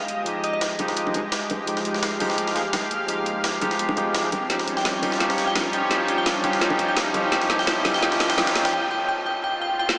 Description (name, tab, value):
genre	liquid drum and bass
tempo	170 BPM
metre	4/4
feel	swing 54% on 16ths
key	unclear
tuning	A4 = 440 Hz
part	glassy synth bell	melody	0.0-1.0, 4.8-10.0 s	Eb5 to G5	-31 LUFS	equal	chorus, phaser, vintage 12-bit sampler grit, analog delay
part	lush unison pad	sustained chords	0.0-8.7 s	G3 to F5	-32 LUFS	equal	chorus
part	saturated sub bass	bass	0.0-8.7 s	none	barely audible	none	none
part	riser and swell	sound effects	2.4-10.0 s	none	-36 LUFS	equal	none
part	breakbeat sampler-style drum kit	drums	0.1-8.7 s	hi-hat, snare drum	-32 LUFS	equal	high-pass filter on hats, high-pass filter on snare
part	drum and bass drum kit	drums	0.1-10.0 s	hi-hat, snare drum	-30 LUFS	equal	none
part	barky tine electric piano	accompaniment	0.2-8.7 s	F3 to Ab4	-28 LUFS	equal	analog delay
part	bongos	percussion	0.8-8.5 s	none	-37 LUFS	equal	none
room	wet huge ambient reverb, RT60 8.4 s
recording	dreamy mix soaked in reverb, small speaker sound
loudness	-23 LUFS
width	mono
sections	0.0-10.0 A section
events	build-up 0.0-10.0; drum fill 4.5-8.7; break 8.7-10.0; swell 9.4-10.0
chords	0.0 Fm9; 4.5 Eb9